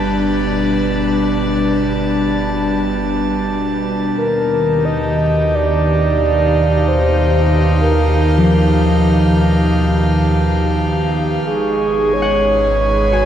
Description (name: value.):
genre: ambient.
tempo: 66 BPM.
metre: 4/4.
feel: straight.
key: unclear.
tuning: A4 = 440 Hz.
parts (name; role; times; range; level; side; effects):
airy breathy pad; sustained chords; 0.0-13.3 s; D#3 to A5; -17 LUFS; equal; chorus.
warm sub bass; bass; 0.0-13.3 s; G1 to D#2; -20 LUFS; equal; none.
analog drone; drone; 0.0-13.3 s; B2 to B4; -28 LUFS; equal; chorus.
glass harmonica; texture; 0.0-13.3 s; A5 to C#6; -28 LUFS; right 1 dB; none.
breathy flute-like synth lead; melody; 4.2-13.3 s; G#4 to D#5; -18 LUFS; right 1 dB; chorus, diffuse ambient delay.
concert harp; arpeggios; 8.4-13.3 s; E#3 to G#5; -19 LUFS; left 1 dB; diffuse ambient delay.
room: wet lush hall reverb, RT60 2.6 s.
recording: dreamy mix soaked in reverb.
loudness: -13 LUFS.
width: side -10 dB against mid.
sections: 0.0-13.3 A section.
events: fade-in on sub bass 0.0-13.3; fade-in on glass harmonica 0.0-13.3; fade-out on synth drone 0.0-13.3.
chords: 0.0 Gadd9; 4.2 D#add9; 11.4 G#m.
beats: | 0.52 1.43 2.34 3.25 | 4.16 5.06 5.97 6.88 | 7.79 8.70 9.61 10.52 | 11.43 12.34 13.25.